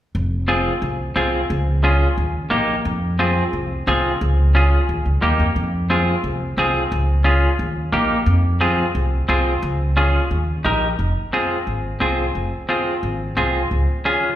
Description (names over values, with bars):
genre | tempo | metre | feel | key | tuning
latin, cumbia | 177 BPM | 4/4 | straight | F minor | A4 = 441 Hz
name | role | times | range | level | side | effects
upright bass | bass | 0.1-13.8 s | F1 to F2 | -20 LUFS | equal | none
semi-hollow electric guitar | accompaniment | 0.5-14.3 s | Bb3 to Bb4 | -20 LUFS | equal | none
room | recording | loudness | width
wet recital hall reverb, RT60 1.7 s | recorded in a church or concert hall | -17 LUFS | side -12 dB against mid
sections
0.1-11.0 A section; 11.0-14.4 B section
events
none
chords
0.1 Fm; 1.5 Db; 2.2 Eb; 2.9 Fm; 4.2 Db; 4.9 Eb; 5.6 Fm; 6.9 Db; 7.6 Eb; 8.3 Fm; 9.6 Db; 10.3 Eb; 11.0 Fm; 13.7 Db